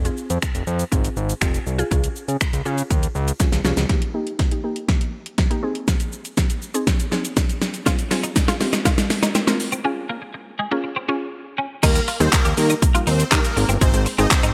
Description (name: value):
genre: dance-pop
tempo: 121 BPM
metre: 4/4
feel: straight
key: Eb mixolydian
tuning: A4 = 438 Hz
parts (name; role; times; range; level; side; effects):
- mallet-like synth pluck; accompaniment; 0.0-14.5 s; G3 to Bb4; -29 LUFS; equal; chorus, sidechain pumping, low-pass filter
- fat analog bass; bass; 0.0-3.9, 11.8-14.5 s; F1 to Eb3; -24 LUFS; equal; sidechain pumping
- pop drum kit; drums; 0.1-14.5 s; crash cymbal, finger snaps, handclaps, hi-hat, kick drum, shaker, snare drum; -22 LUFS; equal; gated reverb
- twelve-string electric guitar; riff; 7.9-14.5 s; Ab3 to G4; -29 LUFS; equal; ensemble chorus, low-pass filter
- tube shaker; percussion; 7.9-14.5 s; none; -39 LUFS; equal; none
- supersaw chords; melody; 11.8-14.5 s; Bb3 to Eb5; -27 LUFS; equal; ensemble chorus, sidechain pumping, digital delay
room: light reverb, digital ambience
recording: bright 1980s-style digital production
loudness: -21 LUFS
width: mono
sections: 0.0-3.9 A section; 3.9-11.8 B section; 11.8-14.5 C section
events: drum fill 3.4-3.9, 3.9-9.8; build-up 3.9-11.8; filter sweep 3.9-11.8; break 9.8-11.8; drop 11.8-14.5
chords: 0.0 Fm; 1.9 Db; 3.9 Eb; 5.6 Ab; 7.9 Fm; 9.8 Db; 11.8 Eb; 13.6 Fm (rootless)